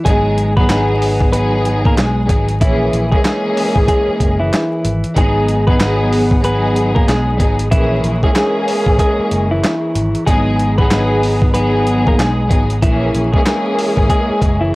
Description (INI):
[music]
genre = hip hop, boom-bap hip-hop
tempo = 94 BPM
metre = 4/4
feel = swing 61% on 16ths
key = G# minor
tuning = A4 = 440 Hz
[part]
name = clean electric guitar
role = melody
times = 0.0-14.8 s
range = E3 to B4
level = -19 LUFS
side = equal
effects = high-pass filter, low-pass filter
[part]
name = warm studio string section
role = accompaniment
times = 0.1-14.8 s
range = E3 to G#4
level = -17 LUFS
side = equal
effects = cassette tape, high-pass filter, low-pass filter
[part]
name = fingered electric bass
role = bass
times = 0.1-14.7 s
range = F#1 to B1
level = -18 LUFS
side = equal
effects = transformer saturation
[part]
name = dusty soul sampler-style drum kit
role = drums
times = 0.1-14.6 s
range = handclaps, hi-hat, kick drum, snare drum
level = -15 LUFS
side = equal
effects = none
[part]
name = percussive tonewheel organ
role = sustained chords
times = 5.2-14.8 s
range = G#4 to D#6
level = -31 LUFS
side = right 1 dB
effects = none
[sound]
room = little or no reverb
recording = dry, gritty hardware recording, vinyl crackle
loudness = -12 LUFS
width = side -21 dB against mid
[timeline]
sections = 0.0-14.8 A section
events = none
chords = 0.1 G#m7; 2.6 A#m7b5; 5.2 G#m7; 7.7 A#m7b5; 10.3 G#m7; 12.8 A#m7b5